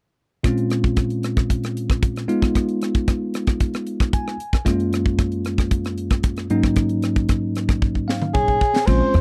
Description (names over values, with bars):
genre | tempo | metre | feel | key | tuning
electric jazz fusion | 114 BPM | 4/4 | straight | unclear | A4 = 440 Hz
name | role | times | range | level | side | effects
bell-like tine electric piano | accompaniment | 0.4-9.2 s | Gb2 to Ab5 | -24 LUFS | equal | none
crisp fusion drum kit | drums | 0.4-9.2 s | crash cymbal, hi-hat, kick drum, ride cymbal, rim click, snare drum, toms | -23 LUFS | equal | none
warm soprano saxophone | melody | 8.3-9.2 s | Ab4 to C5 | -21 LUFS | equal | none
upright bass | bass | 8.9-9.2 s | Bb1 to F2 | -19 LUFS | equal | none
room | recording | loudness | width
little or no reverb | dry, close 1970s-style studio recording | -21 LUFS | mono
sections
0.4-8.9 A section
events
tine electric piano fill 3.9-4.7, 7.8-8.9; drum fill 7.8-8.9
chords
0.4 Bbm7; 2.3 Abm6; 4.7 Gbmaj9; 6.5 Ab9sus4